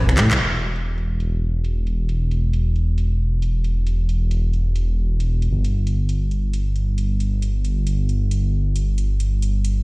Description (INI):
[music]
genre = UK garage, two-step garage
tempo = 135 BPM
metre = 4/4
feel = swing 62% on 16ths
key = E minor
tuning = A4 = 440 Hz
[part]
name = dark detuned saw bass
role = bass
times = 0.0-9.8 s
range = E1 to A2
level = -19 LUFS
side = equal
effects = none
[part]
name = house drum kit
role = drums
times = 0.1-9.7 s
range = finger snaps, handclaps, hi-hat, shaker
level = -25 LUFS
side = equal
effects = low-pass filter on perc, low-pass filter on hats, low-pass filter on snare, low-pass filter on room
[sound]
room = little or no reverb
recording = played on a big sound system in a bare room, stone room reverb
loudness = -19 LUFS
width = side -25 dB against mid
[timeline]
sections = 0.4-9.8 A section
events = drum fill 0.2; band accent 0.3; filter sweep on drum 0.4-9.8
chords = none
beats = | 0.40 0.84 1.28 1.73 | 2.17 2.62 3.06 3.51 | 3.95 4.39 4.84 5.28 | 5.73 6.17 6.62 7.06 | 7.51 7.95 8.39 8.84 | 9.28 9.73